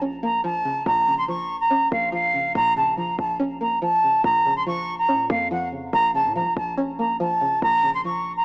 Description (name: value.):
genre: hip hop, drill.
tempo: 142 BPM.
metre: 4/4.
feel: half-time.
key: Bb harmonic minor.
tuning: A4 = 436 Hz.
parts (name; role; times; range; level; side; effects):
string-like resonator pluck; accompaniment; 0.0-8.4 s; Bb2 to Db4; -29 LUFS; equal; chorus.
hard-hitting 808-style bass; bass; 0.0-8.4 s; Bb1 to Bb2; -33 LUFS; equal; none.
silver concert flute; melody; 0.2-8.4 s; F5 to Db6; -20 LUFS; equal; none.
room: light reverb.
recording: dry, gritty hardware recording, cassette tape, small speaker sound.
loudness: -19 LUFS.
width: side -26 dB against mid.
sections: 0.0-8.4 A section.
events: none.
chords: 0.0 Bbm.